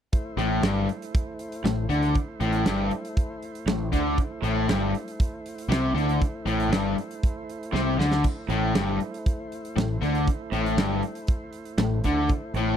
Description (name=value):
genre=classic rock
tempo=118 BPM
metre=4/4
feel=straight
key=A minor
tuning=A4 = 440 Hz
part: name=tonewheel organ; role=sustained chords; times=0.1-12.8 s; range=A3 to C5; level=-37 LUFS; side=right 1 dB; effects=slow rotary speaker, overdrive
part: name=big rock drum kit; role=drums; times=0.1-12.7 s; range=hi-hat, kick drum, snare drum, splash cymbal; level=-25 LUFS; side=right 1 dB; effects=none
part: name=biting overdriven guitar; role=riff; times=0.4-12.8 s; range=G2 to D3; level=-26 LUFS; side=left 10 dB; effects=none
part: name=raw garage guitar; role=riff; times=0.4-12.8 s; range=G2 to D3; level=-30 LUFS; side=right 12 dB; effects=overdrive
part: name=growling fingered electric bass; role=bass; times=0.4-12.8 s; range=G1 to D2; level=-28 LUFS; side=right 1 dB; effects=overdrive
room=small room ambience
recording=dry, close 1970s-style studio recording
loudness=-23 LUFS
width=side -9 dB against mid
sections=0.1-12.8 A section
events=drum fill 7.7-8.2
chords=0.1 Am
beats=| 0.13 0.63 1.14 1.65 | 2.16 2.66 3.17 3.68 | 4.19 4.69 5.20 5.71 | 6.21 6.72 7.22 7.73 | 8.24 8.74 9.25 9.76 | 10.26 10.77 11.27 11.78 | 12.28